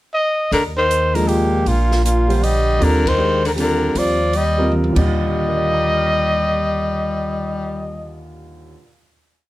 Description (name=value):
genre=modal jazz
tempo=157 BPM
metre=3/4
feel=swing 66% on 8ths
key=Eb major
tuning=A4 = 440 Hz
part: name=mellow trumpet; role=melody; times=0.1-8.2 s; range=F4 to Eb5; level=-20 LUFS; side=equal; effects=plate reverb
part: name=clear tenor saxophone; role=second line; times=0.5-8.1 s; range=Bb2 to G3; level=-22 LUFS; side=left 2 dB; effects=none
part: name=upright bass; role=bass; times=0.5-8.7 s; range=Bb1 to Eb2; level=-21 LUFS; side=equal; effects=none
part: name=open jazz drum kit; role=drums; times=0.5-5.0 s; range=crash cymbal, hi-hat, kick drum, ride cymbal, snare drum, toms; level=-29 LUFS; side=right 1 dB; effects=none
part: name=clear concert grand piano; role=accompaniment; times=1.1-9.1 s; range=Eb2 to Bb6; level=-23 LUFS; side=right 1 dB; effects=none
room=moderate studio reverb, RT60 0.5 s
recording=none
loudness=-15 LUFS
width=side -16 dB against mid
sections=0.0-0.5 pickup bar; 0.5-5.1 A section; 5.1-7.4 final chord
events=band accent 3.0; drum fill 4.7-5.1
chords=0.0 N.C.; 0.5 Ebmaj9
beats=0.14 | 0.52 0.90 1.28 | 1.66 2.04 2.42 | 2.80 3.19 3.57 | 3.95 4.33 4.71 | 5.09 5.48 5.86 | 6.24 6.62 7.00